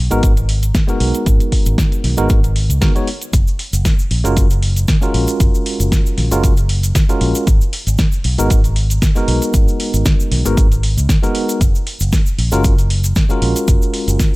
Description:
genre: nu-disco, nu disco.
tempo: 116 BPM.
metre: 4/4.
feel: swing 54% on 16ths.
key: F# major.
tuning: A4 = 439 Hz.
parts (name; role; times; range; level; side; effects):
fingered electric bass with an envelope filter; bass; 0.0-14.2 s; F#1 to C#2; -16 LUFS; equal; none.
tine electric piano; accompaniment; 0.1-14.4 s; G#3 to C#5; -20 LUFS; equal; medium stereo tremolo, sidechain pumping, low-pass filter, analog delay.
pop drum kit; drums; 0.1-14.3 s; hi-hat, shaker, snare drum; -22 LUFS; equal; none.
cabasa; percussion; 0.1-14.3 s; none; -30 LUFS; equal; none.
electronic kick drum; drums; 0.2-14.3 s; none; -14 LUFS; equal; none.
room: little or no reverb.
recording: none.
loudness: -12 LUFS.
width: side -21 dB against mid.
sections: 0.0-14.4 A section.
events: none.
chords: 0.0 G#m7; 3.3 F#maj9; 7.5 G#m7; 11.6 F#maj9.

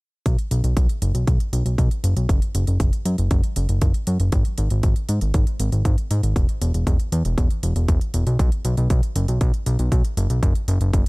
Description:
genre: italo disco.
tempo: 118 BPM.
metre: 4/4.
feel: straight.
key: unclear.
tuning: A4 = 440 Hz.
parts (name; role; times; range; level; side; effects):
fat analog bass; bass; 0.3-11.0 s; E1 to G#2; -20 LUFS; equal; none.
electronic hi-hat; drums; 0.3-11.1 s; none; -36 LUFS; right 2 dB; small room reverb.
electronic kick drum; drums; 0.3-11.0 s; none; -20 LUFS; equal; small room reverb.
room: little or no reverb.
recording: dark, warm production.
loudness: -18 LUFS.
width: side -28 dB against mid.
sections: 0.3-11.1 A section.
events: none.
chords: none.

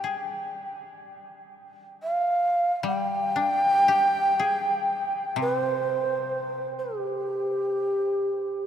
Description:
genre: japanese traditional, Japanese chamber music.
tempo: free time.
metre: none.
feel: none.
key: G in sen.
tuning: A4 = 441 Hz.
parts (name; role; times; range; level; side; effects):
breathy mellow long shakuhachi; melody; 0.0-8.7 s; G4 to G5; -24 LUFS; right 1 dB; none.
koto; accompaniment; 0.0-8.5 s; C3 to Ab4; -34 LUFS; left 4 dB; none.
room: wet cathedral reverb, RT60 6.5 s.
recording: in a vast, echoing space.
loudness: -23 LUFS.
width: side -9 dB against mid.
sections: 0.0-8.7 A section.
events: none.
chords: none.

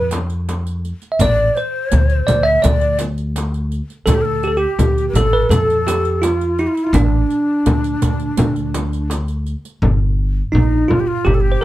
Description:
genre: Turkish makam ensemble.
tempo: 83 BPM.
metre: 4/4.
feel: straight.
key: D makam huseyni.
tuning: A4 = 438 Hz.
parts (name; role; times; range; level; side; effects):
bell-like tine electric piano; melody; 0.0-11.6 s; D4 to E5-30c; -18 LUFS; right 2 dB; none.
breathy ney; second line; 0.0-11.6 s; D4 to E5-26c; -23 LUFS; left 4 dB; none.
upright bass; bass; 0.0-11.5 s; G1 to F2; -18 LUFS; equal; none.
darbuka; percussion; 0.1-11.5 s; none; -22 LUFS; right 1 dB; none.
frame drum; percussion; 0.1-11.4 s; none; -22 LUFS; left 2 dB; none.
riq; percussion; 0.1-9.7 s; none; -27 LUFS; right 5 dB; none.
room: light reverb.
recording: dark, warm production.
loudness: -14 LUFS.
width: side -15 dB against mid.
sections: 0.0-9.8 A section; 9.8-11.6 B section.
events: none.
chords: none.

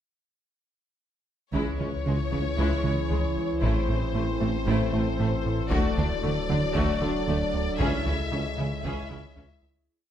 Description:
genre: cinematic, hybrid orchestral and electronic film score.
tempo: 115 BPM.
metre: 4/4.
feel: straight.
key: C# phrygian.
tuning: A4 = 444 Hz.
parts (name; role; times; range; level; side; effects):
rich studio violin section; melody; 1.5-9.7 s; C5 to E5; -34 LUFS; left 6 dB; none.
clear symphonic violin section; second line; 1.5-9.4 s; G#3 to G#4; -38 LUFS; left 3 dB; none.
clear symphonic viola section; accompaniment; 1.5-9.4 s; G#3 to C#4; -35 LUFS; equal; none.
warbly tape-like pad; sustained chords; 2.0-9.9 s; E3 to D5; -33 LUFS; right 1 dB; chorus, built-in reverb.
warm French horn section; sustained chords; 1.5-9.6 s; E3 to E4; -35 LUFS; left 4 dB; none.
rubbery square bass; riff; 1.5-9.8 s; C#2 to A3; -31 LUFS; right 2 dB; none.
dark symphonic cello section; bass; 1.5-9.5 s; A2 to D3; -34 LUFS; right 2 dB; none.
mellow tuba; bass; 1.5-9.5 s; A1 to D2; -35 LUFS; right 3 dB; none.
pure sine sub bass; bass; 1.5-9.9 s; D1 to C#2; -34 LUFS; left 1 dB; none.
rich symphonic double bass section; bass; 1.5-9.4 s; A1 to D2; -35 LUFS; right 4 dB; none.
taiko ensemble; drums; 1.5-9.6 s; none; -32 LUFS; left 1 dB; none.
room: moderate scoring stage reverb, RT60 1.8 s.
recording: none.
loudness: -24 LUFS.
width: side -10 dB against mid.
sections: 1.5-9.9 theme.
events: fade-out 7.8-9.9.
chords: 1.5 C#m; 3.6 Am; 5.7 D; 7.8 C#m.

